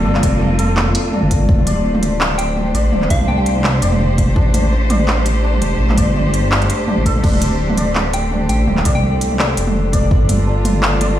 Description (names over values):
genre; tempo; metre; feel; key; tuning
half-time drum and bass; 167 BPM; 4/4; swing 55% on 16ths, half-time; D minor; A4 = 441 Hz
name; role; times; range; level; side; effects
rich studio cello section; sustained chords; 0.0-11.2 s; G3 to C5; -21 LUFS; right 1 dB; sidechain pumping
santur; arpeggios; 0.0-11.2 s; D4 to D5; -24 LUFS; left 3 dB; tape echo
dark detuned saw bass; bass; 0.0-11.2 s; D1 to C2; -17 LUFS; equal; tube saturation
organic electronic drum kit; drums; 0.1-11.1 s; crash cymbal, handclaps, hi-hat, toms; -20 LUFS; right 1 dB; none
electronic kick drum; drums; 0.2-10.2 s; none; -15 LUFS; equal; none
soft synth bell; melody; 2.4-3.4, 8.1-9.4 s; F5 to G5; -28 LUFS; right 1 dB; chorus, phaser, ping-pong delay
metallic inharmonic drone; texture; 8.1-11.2 s; A4; -28 LUFS; left 2 dB; chorus, built-in reverb
room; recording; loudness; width
little or no reverb; played on a big sound system in a bare room, stone room reverb; -13 LUFS; side -12 dB against mid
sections
0.0-11.2 A section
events
none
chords
0.0 Gmadd9; 1.5 Dm7; 4.4 Am; 7.2 Dm7; 10.1 Gmadd9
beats
| 0.05 0.41 0.77 1.13 | 1.49 1.85 2.21 2.56 | 2.92 3.28 3.64 4.00 | 4.36 4.72 5.08 5.44 | 5.80 6.16 6.52 6.88 | 7.24 7.59 7.95 8.31 | 8.67 9.03 9.39 9.75 | 10.11 10.47 10.83 11.19